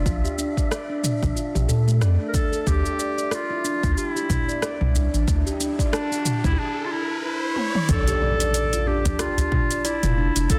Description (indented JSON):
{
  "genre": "organic downtempo",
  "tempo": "92 BPM",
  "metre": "4/4",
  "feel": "swing 58% on 16ths",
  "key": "unclear",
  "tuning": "A4 = 439 Hz",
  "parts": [
    { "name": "handpan", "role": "arpeggios", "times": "0.0-10.6 s", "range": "A3 to D5", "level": "-31 LUFS", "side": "equal", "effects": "delay" },
    { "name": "warm sub bass", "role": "bass", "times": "0.0-10.6 s", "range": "F1 to Bb2", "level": "-23 LUFS", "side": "equal", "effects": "none" },
    { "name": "wind-like tuned noise texture", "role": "texture", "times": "0.0-10.6 s", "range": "E5 to A5", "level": "-45 LUFS", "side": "equal", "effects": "built-in reverb" },
    { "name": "deep house drum kit", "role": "drums", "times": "0.1-10.6 s", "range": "hi-hat, rim click, shaker, toms", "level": "-30 LUFS", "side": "equal", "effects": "overdrive, small room ambience" },
    { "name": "electronic kick drum", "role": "drums", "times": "0.1-10.6 s", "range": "none", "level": "-27 LUFS", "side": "equal", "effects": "overdrive, small room ambience" },
    { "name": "udu", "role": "percussion", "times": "0.2-9.5 s", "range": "none", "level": "-32 LUFS", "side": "equal", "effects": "none" },
    { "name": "clear clarinet", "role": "melody", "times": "2.3-10.6 s", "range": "D4 to Bb4", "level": "-29 LUFS", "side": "equal", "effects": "delay" },
    { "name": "riser and impact", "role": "sound effects", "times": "5.1-10.5 s", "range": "none", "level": "-32 LUFS", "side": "equal", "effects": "none" }
  ],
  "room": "light reverb",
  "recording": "dense, heavily limited modern master",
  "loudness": "-23 LUFS",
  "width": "mono",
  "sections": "0.0-7.9 A section; 7.9-10.6 B section",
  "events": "riser 5.1-7.9; drum fill 7.6-7.9; impact 7.9-10.5",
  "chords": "0.0 Bb; 2.7 Dsus2; 7.9 Bb"
}